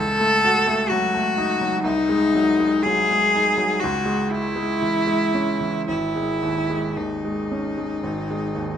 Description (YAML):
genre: classical, romantic duo for cello and grand piano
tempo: 55-65 BPM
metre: 4/4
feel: rubato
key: unclear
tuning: A4 = 440 Hz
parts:
  - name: rich cello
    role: melody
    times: 0.0-8.8 s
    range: D#4 to A4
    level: -20 LUFS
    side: left 2 dB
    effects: none
  - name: bright baby grand piano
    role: accompaniment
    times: 0.0-8.8 s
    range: G#1 to F#4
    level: -24 LUFS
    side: right 2 dB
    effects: none
room: moderate recital hall reverb, RT60 1.5 s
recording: close, detailed microphones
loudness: -19 LUFS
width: side -9 dB against mid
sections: 0.0-8.8 A section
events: none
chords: 0.0 D#m7b5/C#; 1.8 G#7/B#; 3.8 C#m; 5.9 G#sus4; 8.0 G#5